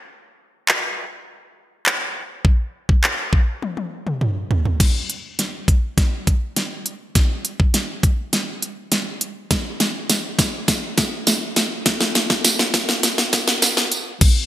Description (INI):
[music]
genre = pop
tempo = 102 BPM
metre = 4/4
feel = straight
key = none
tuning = none
[part]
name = pop drum kit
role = drums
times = 0.7-14.3 s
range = crash cymbal, handclaps, hi-hat, kick drum, snare drum, toms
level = -17 LUFS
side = equal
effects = gated reverb
[part]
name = tambourine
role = percussion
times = 9.8-14.3 s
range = none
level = -24 LUFS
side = right 3 dB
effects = none
[sound]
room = light reverb, digital ambience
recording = bright 1980s-style digital production, high-pass filter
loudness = -18 LUFS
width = side -13 dB against mid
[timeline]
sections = 0.0-4.8 A section; 4.8-14.2 B section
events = drum fill 3.6-4.8, 4.8-14.2; build-up 4.8-14.2; filter sweep 4.8-14.2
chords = none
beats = | 0.10 0.68 1.27 1.86 | 2.45 3.04 3.62 4.21 | 4.80 5.39 5.98 6.57 | 7.15 7.74 8.33 8.92 | 9.51 10.10 10.68 11.27 | 11.86 12.45 13.04 13.62 | 14.21